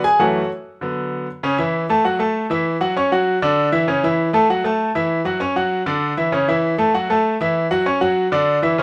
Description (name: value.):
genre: latin.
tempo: 196 BPM.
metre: 4/4.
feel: straight.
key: A major.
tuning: A4 = 440 Hz.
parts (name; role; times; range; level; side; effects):
bright grand piano; solo; 0.0-8.8 s; F#2 to C#6; -19 LUFS; equal; none.
room: light reverb.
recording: none.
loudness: -19 LUFS.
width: mono.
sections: 0.0-1.4 A section; 1.4-8.8 B section.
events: grand piano solo 0.0-1.4.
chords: 0.2 F#m7; 0.8 D6; 1.4 A; 2.0 Esus24; 2.7 F#5; 3.3 D; 3.9 A; 4.5 Esus24; 5.1 F#5; 5.7 D; 6.3 A; 6.9 Esus24; 7.6 F#5; 8.2 D.